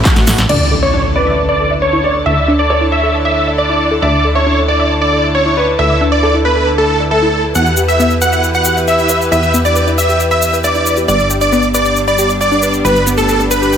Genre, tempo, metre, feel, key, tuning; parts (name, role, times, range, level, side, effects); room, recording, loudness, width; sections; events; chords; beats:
uplifting trance; 136 BPM; 4/4; straight; D major; A4 = 440 Hz
warm studio string section; sustained chords; 0.0-13.8 s; D3 to B4; -20 LUFS; equal; sidechain pumping
dense compressed supersaw; melody; 0.1-13.7 s; A3 to F#5; -14 LUFS; right 1 dB; sidechain pumping, low-pass filter, dub echo
analog pluck; second line; 0.1-13.8 s; F#4 to F#5; -22 LUFS; left 1 dB
big-room dance drum kit; drums; 0.1-0.6 s; crash cymbal, handclaps, hi-hat, ride cymbal, snare drum; -17 LUFS; left 1 dB; small room reverb
tube shaker; percussion; 0.1-0.5, 7.6-13.8 s; -22 LUFS; left 2 dB
plucky analog bass; bass; 0.2-13.8 s; G1 to E2; -18 LUFS; equal; sidechain pumping
dark baby grand piano; second line; 0.5-7.5 s; A4 to E5; -21 LUFS; equal; dub echo
wide unison pluck; arpeggios; 0.5-13.8 s; B3 to D6; -20 LUFS; left 2 dB; sidechain pumping, dub echo
impact and reverse cymbal; sound effects; 0.5-2.3, 13.7-13.8 s; -20 LUFS; equal
light reverb; -10 LUFS; side -8 dB against mid
0.5-13.8 A section
drum fill 0.0-0.5; impact 0.5-2.3; filter sweep on synth pluck 0.5-13.8
0.5 Dsus2; 7.6 Em; 11.1 G
0.05 | 0.49 0.94 1.38 1.82 | 2.26 2.70 3.14 3.58 | 4.02 4.46 4.91 5.35 | 5.79 6.23 6.67 7.11 | 7.55 8.00 8.44 8.88 | 9.32 9.76 10.20 10.64 | 11.08 11.52 11.96 12.41 | 12.85 13.29 13.73